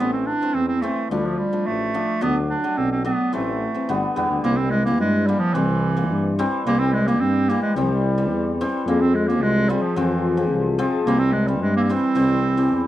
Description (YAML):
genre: klezmer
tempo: 109 BPM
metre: 2/4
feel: straight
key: unclear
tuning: A4 = 444 Hz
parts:
  - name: clear clarinet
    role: melody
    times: 0.0-12.9 s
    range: E3 to D4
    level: -21 LUFS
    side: right 2 dB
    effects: none
  - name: hammered dulcimer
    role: accompaniment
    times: 0.0-12.9 s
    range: D3 to D4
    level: -24 LUFS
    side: left 3 dB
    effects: none
  - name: breathy tuba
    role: bass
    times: 0.0-12.9 s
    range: G1 to G2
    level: -24 LUFS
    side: left 1 dB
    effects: none
room: moderate studio reverb, RT60 0.5 s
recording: none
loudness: -18 LUFS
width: side -13 dB against mid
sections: 0.0-4.4 A section; 4.4-12.9 B section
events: none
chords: 0.0 Am; 1.1 Dm; 2.2 D; 3.3 Am; 3.9 G; 4.4 C; 8.9 Fm; 11.1 C